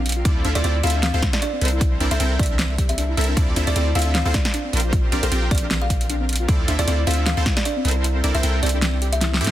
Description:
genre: future bass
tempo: 154 BPM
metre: 4/4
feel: swing 55% on 16ths, half-time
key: D minor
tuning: A4 = 439 Hz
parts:
  - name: supersaw stab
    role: riff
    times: 0.0-9.5 s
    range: C4 to G5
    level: -26 LUFS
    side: right 1 dB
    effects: sidechain pumping
  - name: long sustained 808-style bass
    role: bass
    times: 0.0-9.5 s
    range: Bb1 to A2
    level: -22 LUFS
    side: equal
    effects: tube saturation, sidechain pumping
  - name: pop drum kit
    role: drums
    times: 0.1-9.5 s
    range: hi-hat, snare drum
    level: -25 LUFS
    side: equal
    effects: none
  - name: soft round pluck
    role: arpeggios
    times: 0.2-9.3 s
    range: C4 to G4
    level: -30 LUFS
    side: left 2 dB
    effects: wide subtle chorus, sidechain pumping, digital delay
  - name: electronic kick drum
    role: drums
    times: 0.3-7.5 s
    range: none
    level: -21 LUFS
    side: equal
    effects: none
  - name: kalimba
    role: melody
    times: 0.6-9.4 s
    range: A4 to F5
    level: -29 LUFS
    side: equal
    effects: sidechain pumping, tape echo
room: little or no reverb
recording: dense, heavily limited modern master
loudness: -18 LUFS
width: side -13 dB against mid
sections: 0.0-9.5 A section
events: kick drops out 8.0-9.5; drum fill 9.2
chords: 0.3 Dm9; 1.8 C13; 3.4 Dm9; 4.7 Bb69; 6.5 Dm9; 8.0 C13; 8.8 Am7

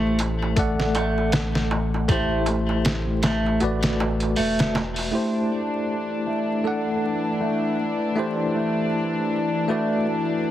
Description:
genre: trip hop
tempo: 79 BPM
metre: 4/4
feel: swing 59% on 16ths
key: A dorian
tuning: A4 = 441 Hz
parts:
  - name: bell-like tine electric piano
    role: accompaniment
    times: 0.0-10.5 s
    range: A3 to F#5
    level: -26 LUFS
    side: equal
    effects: fast stereo tremolo, tape echo
  - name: clean electric guitar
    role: arpeggios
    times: 0.0-10.1 s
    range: A3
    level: -27 LUFS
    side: equal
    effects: vintage 12-bit sampler grit, low-pass filter, ping-pong delay
  - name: soft dub sub bass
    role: bass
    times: 0.0-5.1 s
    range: E1 to A1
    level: -26 LUFS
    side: equal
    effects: none
  - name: bowed-like drone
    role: texture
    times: 0.3-10.5 s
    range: E3 to E4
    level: -32 LUFS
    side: left 2 dB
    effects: built-in reverb
  - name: trip hop sampler-style drum kit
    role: drums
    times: 0.2-5.1 s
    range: hi-hat, kick drum, snare drum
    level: -25 LUFS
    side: equal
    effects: none
  - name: darbuka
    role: percussion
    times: 0.2-5.1 s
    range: none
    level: -33 LUFS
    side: right 3 dB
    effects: none
  - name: warm studio violin section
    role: sustained chords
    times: 5.1-10.5 s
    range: D4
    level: -28 LUFS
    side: left 2 dB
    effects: none
room: moderate spring reverb, RT60 2.4 s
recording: heavily compressed radio sound, multiband compression, vinyl crackle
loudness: -21 LUFS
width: side -12 dB against mid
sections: 0.0-5.1 A section; 5.1-10.5 B section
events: none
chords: 0.0 Am7; 0.6 D/A; 2.1 Am7; 3.6 E9sus4; 5.1 Am7; 6.6 D; 8.2 Am7; 9.7 E9sus4

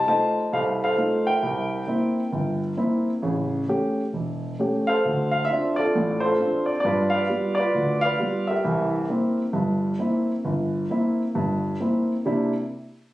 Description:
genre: solo jazz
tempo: 133 BPM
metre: 4/4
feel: swing 66% on 8ths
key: C mixolydian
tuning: A4 = 438 Hz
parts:
  - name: warm grand piano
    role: solo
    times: 0.0-12.5 s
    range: E1 to A5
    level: -21 LUFS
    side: equal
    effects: none
room: moderate studio reverb, RT60 0.7 s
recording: recorded on a phone in the room, studio reverb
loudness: -21 LUFS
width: side -16 dB against mid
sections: 0.0-12.3 A section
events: none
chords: 0.0 F7; 1.4 C7; 3.2 A7; 5.0 Dm7; 6.8 G7; 8.6 C7; 12.3 C9

